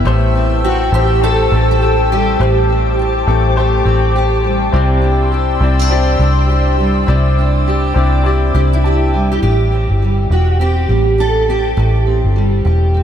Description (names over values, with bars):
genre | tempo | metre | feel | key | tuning
acoustic pop | 102 BPM | 4/4 | swing 60% on 16ths | unclear | A4 = 440 Hz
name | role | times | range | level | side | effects
clear concert grand piano | accompaniment | 0.0-9.5 s | A3 to A5 | -22 LUFS | left 5 dB | analog chorus
fingerpicked steel-string acoustic guitar | accompaniment | 0.0-13.0 s | A2 to G4 | -19 LUFS | equal | double-tracked left and right
vintage muted fingered electric bass | bass | 0.0-13.0 s | E1 to C2 | -14 LUFS | equal | none
glassy FM pad | sustained chords | 0.1-9.4 s | C5 to E6 | -21 LUFS | left 3 dB | ensemble chorus, built-in reverb
fingerpicked steel-string acoustic guitar | melody | 0.6-3.8, 8.5-12.0 s | E4 to A4 | -19 LUFS | right 3 dB | ensemble chorus, tape echo
room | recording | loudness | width
light reverb, small room ambience | none | -11 LUFS | side -9 dB against mid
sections
0.0-9.4 A section; 9.4-13.0 B section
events
grand piano fill 8.6-9.4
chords
0.0 Am7; 4.7 Cadd9; 9.4 Am7